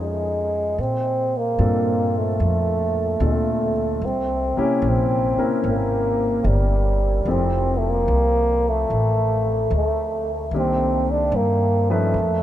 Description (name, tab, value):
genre	jazz ballad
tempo	74 BPM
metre	4/4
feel	swing 68% on 8ths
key	unclear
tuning	A4 = 440 Hz
part	trombone with cup mute	melody	0.0-12.4 s	G3 to D4	-21 LUFS	right 1 dB	none
part	warm concert grand piano	accompaniment	0.0-12.2 s	Bb2 to B4	-26 LUFS	left 2 dB	none
part	upright bass	bass	0.0-12.4 s	F1 to Bb2	-23 LUFS	equal	none
room	moderate huge ambient reverb, RT60 8.8 s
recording	in a vast, echoing space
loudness	-18 LUFS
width	side -12 dB against mid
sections	0.8-12.4 A section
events	none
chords	0.0 Fm7b13; 0.8 Bbmaj7; 4.0 C7b9; 7.3 Fmaj7; 10.5 Cm9